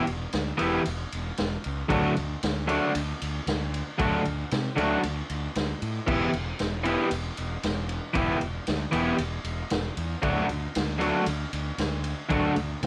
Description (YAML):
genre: garage rock duo or trio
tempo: 115 BPM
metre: 4/4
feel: straight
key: unclear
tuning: A4 = 440 Hz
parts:
  - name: raw garage guitar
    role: riff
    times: 0.0-12.5 s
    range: D3 to G4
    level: -27 LUFS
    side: equal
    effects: overdrive, cassette tape
  - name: fuzz fingered electric bass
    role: bass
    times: 0.1-12.9 s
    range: E1 to C3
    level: -34 LUFS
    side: equal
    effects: overdrive
  - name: raw garage drum kit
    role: drums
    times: 0.1-12.9 s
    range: crash cymbal, kick drum, ride cymbal, snare drum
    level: -34 LUFS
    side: equal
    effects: cassette tape
room: moderate booth ambience, RT60 0.2 s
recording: home recording on cassette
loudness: -28 LUFS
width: mono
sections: 0.0-12.9 A section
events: none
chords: 0.0 N.C.; 1.9 D; 6.1 Em; 10.2 D